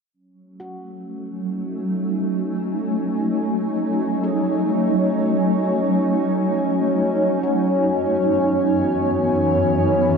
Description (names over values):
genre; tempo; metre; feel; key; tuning
ambient; free time; none; none; F# dorian; A4 = 441 Hz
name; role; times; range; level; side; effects
granular cloud pad; sustained chords; 1.1-10.2 s; F#2 to G#5; -20 LUFS; equal; built-in reverb
analog drone; drone; 0.7-10.2 s; F#3 to C#4; -23 LUFS; equal; chorus
handpan; arpeggios; 0.6-9.6 s; F#4 to G#4; -42 LUFS; equal; none
room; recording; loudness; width
wet huge ambient reverb, RT60 9.2 s; in a vast, echoing space; -18 LUFS; side -5 dB against mid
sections
0.1-10.2 A section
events
filter sweep on ambient pad 0.1-10.2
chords
0.1 F#m69; 7.4 C#m7/F#